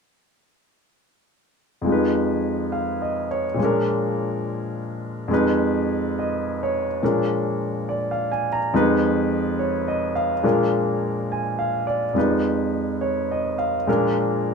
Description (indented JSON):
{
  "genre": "jazz",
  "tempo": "70 BPM",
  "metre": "4/4",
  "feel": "swing 68% on 8ths",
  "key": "unclear",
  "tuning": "A4 = 436 Hz",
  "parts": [
    { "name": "clear grand piano", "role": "accompaniment", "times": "1.8-14.5 s", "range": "F2 to Bb5", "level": "-20 LUFS", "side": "equal", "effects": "none" }
  ],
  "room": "wet club ambience, RT60 0.5 s",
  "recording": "minimal, uncompressed stereo recording",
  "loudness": "-20 LUFS",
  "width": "side -5 dB against mid",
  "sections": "1.9-14.5 A section",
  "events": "none",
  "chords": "1.9 Fm7b5; 3.6 Bb7; 5.3 Fm7b5; 7.0 Bb7; 8.7 Fm7b5; 10.4 Bb7; 12.2 Fm7b5; 13.9 Bb7"
}